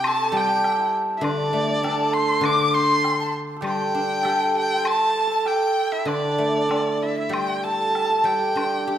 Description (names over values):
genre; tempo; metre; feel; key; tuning
chinese traditional, Chinese chamber ensemble; 99 BPM; 4/4; rubato; G zhi mode; A4 = 439 Hz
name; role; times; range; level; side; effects
rich erhu; melody; 0.0-9.0 s; D5 to D6; -25 LUFS; right 1 dB; none
breathy large dizi; second line; 0.0-9.0 s; D5 to D6; -27 LUFS; left 5 dB; none
hammered dulcimer; second line; 0.0-9.0 s; C4 to D5; -24 LUFS; right 3 dB; none
guzheng; accompaniment; 0.0-9.0 s; C3 to G4; -26 LUFS; equal; none
woodblock; percussion; 0.0-8.7 s; none; -31 LUFS; left 2 dB; none
room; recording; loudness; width
wet recital hall reverb, RT60 1.4 s; none; -19 LUFS; side -10 dB against mid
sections
0.0-9.0 A section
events
none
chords
none